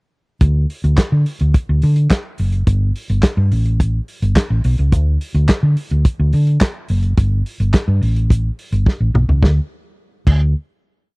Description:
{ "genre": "disco", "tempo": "106 BPM", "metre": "4/4", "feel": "straight", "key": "D major", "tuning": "A4 = 440 Hz", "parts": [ { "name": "hollow-body short-scale fingered electric bass", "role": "bass", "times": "0.4-10.5 s", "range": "F#1 to D3", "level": "-14 LUFS", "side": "equal", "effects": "none" }, { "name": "warm soul drum kit", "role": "drums", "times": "0.4-10.4 s", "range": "crash cymbal, handclaps, hi-hat, kick drum, snare drum, toms", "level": "-14 LUFS", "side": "equal", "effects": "none" } ], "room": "little or no reverb", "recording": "dry, close 1970s-style studio recording", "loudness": "-14 LUFS", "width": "side -34 dB against mid", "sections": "0.4-9.4 verse; 9.4-11.2 final chord", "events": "drum fill 8.9-9.4", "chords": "none", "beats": "| 0.41 0.97 1.54 2.10 | 2.67 3.23 3.80 4.36 | 4.92 5.49 6.05 6.61 | 7.17 7.74 8.30 8.86 | 9.43 9.99" }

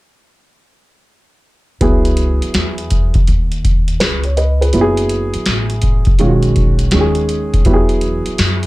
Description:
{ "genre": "hip hop, jazz-hop", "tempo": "82 BPM", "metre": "4/4", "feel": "swing 66% on 16ths", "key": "C# minor", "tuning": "A4 = 440 Hz", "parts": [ { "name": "dark upright piano", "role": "accompaniment", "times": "1.8-8.7 s", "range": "D#3 to D#5", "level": "-17 LUFS", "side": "right 1 dB", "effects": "none" }, { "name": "upright bass", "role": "bass", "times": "1.8-8.7 s", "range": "F#1 to F#2", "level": "-18 LUFS", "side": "equal", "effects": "none" }, { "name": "booming analog drum machine", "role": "drums", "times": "1.8-8.7 s", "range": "hi-hat, kick drum, snare drum", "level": "-15 LUFS", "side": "equal", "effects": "none" } ], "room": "light reverb", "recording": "none", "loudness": "-12 LUFS", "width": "side -19 dB against mid", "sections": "1.8-8.7 A section", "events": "none", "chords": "1.8 C#m9; 4.7 F#m7; 6.2 B; 7.7 E", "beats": "| 1.81 2.54 3.27 4.00 | 4.73 5.46 6.20 6.93 | 7.66 8.39" }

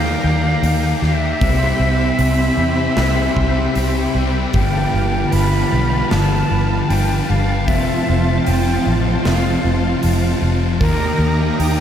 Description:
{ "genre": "rock, shoegaze and dream pop", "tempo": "77 BPM", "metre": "4/4", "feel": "straight", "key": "G mixolydian", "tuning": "A4 = 441 Hz", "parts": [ { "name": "concert flute", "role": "melody", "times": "0.0-11.8 s", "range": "Bb4 to B5", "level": "-23 LUFS", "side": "equal", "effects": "ping-pong delay" }, { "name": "analog string pad", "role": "sustained chords", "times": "0.0-11.8 s", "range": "F4 to B5", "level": "-26 LUFS", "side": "right 1 dB", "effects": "ensemble chorus" }, { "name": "raw garage guitar", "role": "riff", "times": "0.0-11.8 s", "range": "G2 to G4", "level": "-22 LUFS", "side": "right 8 dB", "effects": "overdrive, reverse reverb" }, { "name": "thick fuzz guitar", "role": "riff", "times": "0.0-11.8 s", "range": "F2 to Eb4", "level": "-21 LUFS", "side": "left 8 dB", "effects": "distortion, wide subtle chorus" }, { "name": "vintage muted fingered electric bass", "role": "bass", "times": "0.0-11.8 s", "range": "F1 to E2", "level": "-18 LUFS", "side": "equal", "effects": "none" }, { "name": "big rock drum kit", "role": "drums", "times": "0.6-11.8 s", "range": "hi-hat, kick drum, snare drum", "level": "-26 LUFS", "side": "equal", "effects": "none" } ], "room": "moderate lush hall reverb, RT60 2.7 s", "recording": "dreamy mix soaked in reverb", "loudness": "-14 LUFS", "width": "side -9 dB against mid", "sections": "0.0-11.8 A section", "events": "none", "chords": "0.0 Ebmaj7; 1.4 Cmaj7; 4.5 G9; 7.7 Fmaj7; 10.8 Ebmaj7", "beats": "0.63 | 1.42 2.20 2.98 3.76 | 4.54 5.33 6.11 6.89 | 7.68 8.46 9.24 10.03 | 10.81 11.59" }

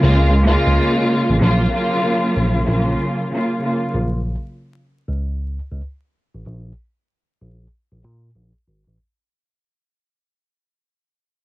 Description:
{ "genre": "hip hop", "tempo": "95 BPM", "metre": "4/4", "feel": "swing 62% on 16ths", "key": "Bb minor", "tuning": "A4 = 437 Hz", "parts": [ { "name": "dark studio string section", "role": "accompaniment", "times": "0.0-3.9 s", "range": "Db3 to F4", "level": "-17 LUFS", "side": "equal", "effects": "cassette tape, high-pass filter, low-pass filter" }, { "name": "tine electric piano", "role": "bass", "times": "0.0-9.0 s", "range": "Ab1 to Bb2", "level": "-18 LUFS", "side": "equal", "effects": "lush chorus" } ], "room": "little or no reverb", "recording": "dry, gritty hardware recording, vinyl crackle", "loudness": "-16 LUFS", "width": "side -18 dB against mid", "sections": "0.0-9.0 A section", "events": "fade-out 0.0-9.0; break 3.9-9.0", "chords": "0.0 Bbm7; 1.4 Gbmaj7/Bb; 3.9 Bbm; 6.5 N.C.", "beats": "0.15 0.78 | 1.41 2.04 2.67 3.31 | 3.94 4.57 5.20 5.83 | 6.46 7.09 7.73 8.36" }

